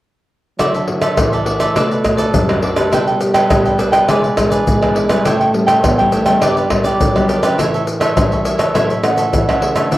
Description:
samba and choro; 103 BPM; 4/4; straight; A4 = 439 Hz
dark trombone; second line; 0.6-10.0 s; C#3 to E4; -20 LUFS; right 1 dB
cavaquinho; accompaniment; 0.6-10.0 s; D4 to G5; -18 LUFS; right 2 dB
nylon-string guitar; accompaniment; 0.6-10.0 s; F#2 to G4; -21 LUFS; left 2 dB
tube shaker, surdo, pandeiro and tamborim; percussion; 0.6-10.0 s; -15 LUFS; left 1 dB
vibraphone with medium mallets; melody; 9.0-10.0 s; E5 to F#5; -19 LUFS; right 3 dB
moderate spring reverb, RT60 1.5 s, small room ambience; home recording on cassette; -12 LUFS; side -15 dB against mid
0.6-9.9 A section
0.6 Dadd9; 1.8 Bm7; 2.9 Gadd9/B; 4.1 E7/B; 5.3 A7; 6.4 G; 7.6 A

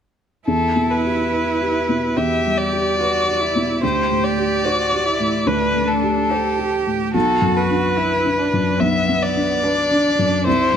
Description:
neoclassical piano and strings; 72 BPM; 4/4; rubato; E minor; A4 = 438 Hz
warm violin; melody; 0.5-10.8 s; A4 to E5; -20 LUFS; left 2 dB
clear cello; second line; 0.5-10.8 s; B3 to G4; -23 LUFS; right 6 dB
felt-muted upright piano; accompaniment; 0.5-10.8 s; B1 to C5; -20 LUFS; left 1 dB
moderate scoring stage reverb, RT60 1.7 s; -16 LUFS; side -8 dB against mid
0.5-10.8 A section
0.5 Em; 3.8 D7sus4; 7.1 Bm

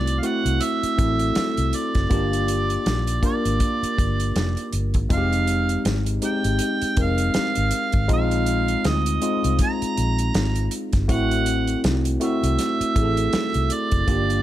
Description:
lush 1970s-style soul; 80 BPM; 4/4; swing 58% on 16ths; A4 = 440 Hz
warm harmonica; melody; 0.0-14.4 s; D5 to Bb5; -26 LUFS; right 4 dB
tine electric piano; accompaniment; 0.0-14.4 s; Ab3 to Bb4; -24 LUFS; left 1 dB; lush chorus
vintage muted fingered electric bass; bass; 0.0-14.4 s; F1 to D2; -24 LUFS; equal
warm soul drum kit; drums; 0.1-14.4 s; hi-hat, kick drum, snare drum; -25 LUFS; equal
small room ambience; -19 LUFS; side -13 dB against mid
0.0-14.4 A section
0.0 D7; 2.1 Gm7; 5.1 Fm7; 8.1 Bb7sus4; 11.1 F#m9b5

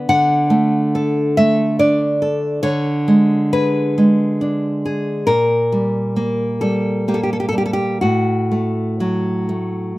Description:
romantic piece for solo classical guitar; 62-71 BPM; 3/4; rubato; A4 = 440 Hz
nylon-string guitar; solo; 0.0-10.0 s; A2 to F#5; -15 LUFS; equal
little or no reverb; recorded outdoors, with no room sound; -15 LUFS; side -18 dB against mid
0.0-10.0 A section
0.1 D; 2.7 Bm69/D; 5.3 Gm/Bb; 8.0 F#m/A

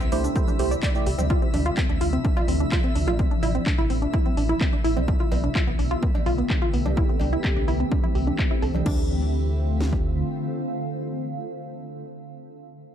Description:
progressive house; 127 BPM; 4/4; straight; D dorian; A4 = 440 Hz
shimmering ambient pad; sustained chords; 0.0-11.9 s; C3 to G4; -30 LUFS; equal; chorus, built-in reverb, phaser, sidechain pumping
wide unison pluck; arpeggios; 0.0-9.1 s; B3 to D5; -28 LUFS; right 1 dB; sidechain pumping, digital delay
round analog bass; bass; 0.0-10.2 s; A1 to D2; -25 LUFS; equal; sidechain pumping
house drum kit; drums; 0.0-9.0 s; crash cymbal, handclaps, hi-hat, shaker; -34 LUFS; left 1 dB; overdrive, low-pass filter on hats, low-pass filter on perc, low-pass filter on snare, low-pass filter on cymbals, low-pass filter on room
twinkling granular texture; texture; 0.0-8.9 s; E4 to E5; -38 LUFS; left 1 dB; built-in reverb, sidechain pumping
deep mellow chord stab; stabs; 0.1-1.0 s; A3 to D5; -29 LUFS; right 5 dB; chorus, sidechain pumping, digital delay
house drum kit; drums; 0.4-10.0 s; kick drum, snare drum; -24 LUFS; equal; overdrive
congas and cowbell; percussion; 0.5-8.8 s; -35 LUFS; right 2 dB; sidechain pumping on perc
little or no reverb; -21 LUFS; side -10 dB against mid
0.0-8.9 A section; 8.9-12.6 B section
filter sweep on synth pluck 0.0-8.9
0.0 C6; 1.3 Dm7; 3.2 Am; 5.1 Gadd9/B; 7.0 C6; 8.9 Dm7

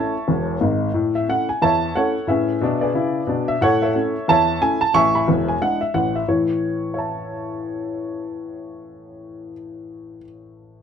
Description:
jazz, stride piano; 180 BPM; 4/4; swing 59% on 8ths; A major; A4 = 441 Hz
warm upright piano; solo; 0.0-10.8 s; E1 to C#6; -18 LUFS; equal
light reverb; -18 LUFS; side -8 dB against mid
0.9-6.3 A section; 6.3-8.9 B section
0.0 A; 2.3 E7/A; 3.6 A; 4.9 E7; 6.3 A

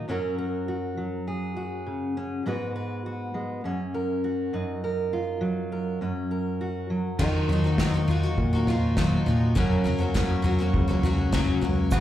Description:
indie folk with a building arrangement; 101 BPM; 4/4; straight; F# major; A4 = 436 Hz
fingerpicked steel-string acoustic guitar; accompaniment; 0.0-12.0 s; F#2 to B4; -28 LUFS; right 1 dB; slapback echo
picked twelve-string acoustic guitar; accompaniment; 7.2-12.0 s; F#2 to G#4; -28 LUFS; left 3 dB; slapback echo
fingered electric bass; bass; 7.2-12.0 s; C#2 to D#3; -26 LUFS; equal
unplugged drum kit; drums; 7.2-12.0 s; crash cymbal, kick drum, snare drum, toms; -26 LUFS; equal
bluegrass banjo; arpeggios; 11.9-12.0 s; F#4; -28 LUFS; right 6 dB
tube shaker; percussion; 11.9-12.0 s; -42 LUFS; right 3 dB
little or no reverb; live gig heard through the venue's PA, club reverb; -24 LUFS; side -12 dB against mid
0.0-7.2 A section; 7.2-12.0 B section
build-up 7.2-12.0; drum fill 7.2-12.0
0.1 F#; 2.5 G#m7; 3.6 F#; 4.5 D#madd9/F#; 6.0 F#; 7.2 D#madd9; 9.6 F#

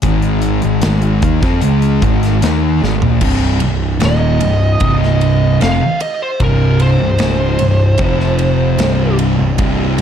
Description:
stoner and doom metal; 75 BPM; 4/4; straight; C phrygian; A4 = 440 Hz
thick fuzz guitar; riff; 0.0-10.0 s; C2 to Eb4; -17 LUFS; left 8 dB; distortion
thick fuzz guitar; riff; 0.0-10.0 s; C2 to Eb4; -17 LUFS; right 8 dB; distortion
fuzz picked electric bass; bass; 0.0-10.0 s; C1 to F2; -17 LUFS; equal; overdrive
big rock drum kit; drums; 0.0-10.0 s; crash cymbal, hi-hat, kick drum, ride cymbal, snare drum, toms; -20 LUFS; equal
fuzz lead guitar; melody; 4.0-9.2 s; Bb4 to F5; -19 LUFS; right 1 dB; distortion
light reverb, small room ambience; dark, warm production; -11 LUFS; side -8 dB against mid
0.0-3.2 A section; 3.2-10.0 B section
drum fill 2.8-3.2; lead electric guitar solo 3.2-10.0
0.0 Ab5; 3.2 Cm; 8.0 F5; 8.8 C5

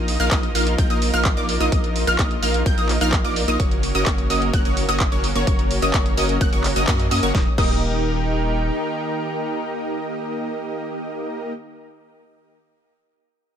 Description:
EDM, festival progressive house; 128 BPM; 4/4; straight; A4 = 443 Hz
lush unison pad; sustained chords; 0.0-11.3 s; Eb3 to Bb4; -29 LUFS; equal; chorus, sidechain pumping
wide unison pluck; arpeggios; 0.0-11.5 s; Db6 to G6; -26 LUFS; equal; ensemble chorus, sidechain pumping, tape echo
supersaw stab; riff; 0.0-11.5 s; Bb3 to G5; -24 LUFS; right 1 dB; sidechain pumping, tape echo
saturated sub bass; bass; 0.0-8.7 s; Eb1 to Gb2; -24 LUFS; equal; sidechain pumping
pop drum kit; drums; 0.1-7.7 s; crash cymbal, handclaps, hi-hat, snare drum; -26 LUFS; equal
electronic kick drum; drums; 0.3-7.7 s; -21 LUFS; equal
little or no reverb; -18 LUFS; side -9 dB against mid
0.0-7.3 A section; 7.3-11.1 B section
drop 0.0-7.3; band accent 6.9
0.0 Bbsus4; 3.6 Gb; 7.3 Eb

